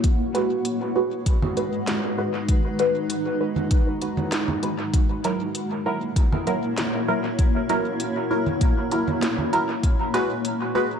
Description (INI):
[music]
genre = ambient dub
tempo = 98 BPM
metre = 4/4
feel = straight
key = G# minor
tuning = A4 = 440 Hz
[part]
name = granular cloud pad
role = sustained chords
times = 0.0-11.0 s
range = G#3 to F#5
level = -26 LUFS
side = left 1 dB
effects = built-in reverb
[part]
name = electronic kick drum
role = drums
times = 0.0-10.0 s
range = none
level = -20 LUFS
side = equal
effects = none
[part]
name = organic electronic drum kit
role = drums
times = 0.0-10.6 s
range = congas, hi-hat, snare drum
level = -30 LUFS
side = right 1 dB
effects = dub echo
[part]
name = filtered dub chord stab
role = stabs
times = 0.3-10.9 s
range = F#3 to B4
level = -26 LUFS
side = right 1 dB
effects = phaser, lush chorus, dub echo
[sound]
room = light reverb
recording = echo-heavy mix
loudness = -21 LUFS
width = side -7 dB against mid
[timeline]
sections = 0.0-11.0 A section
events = none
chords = 0.0 G#m7; 4.9 F#7; 9.8 G#m7